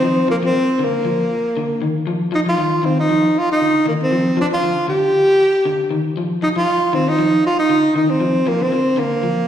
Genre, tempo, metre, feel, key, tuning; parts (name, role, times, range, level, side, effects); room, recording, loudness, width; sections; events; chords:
afrobeat; 117 BPM; 4/4; swing 54% on 16ths; A4 = 439 Hz
breathy tenor saxophone; melody; 0.0-9.5 s; Bb3 to G4; -16 LUFS; right 1 dB; slapback echo
electric guitar through a small old amp; arpeggios; 0.0-9.4 s; D3 to F3; -21 LUFS; left 2 dB; slapback echo
moderate plate reverb, RT60 2.8 s; live gig heard through the venue's PA, recital hall reverb; -15 LUFS; side -10 dB against mid
0.0-9.5 A section
0.0 Bbadd11/D (rootless)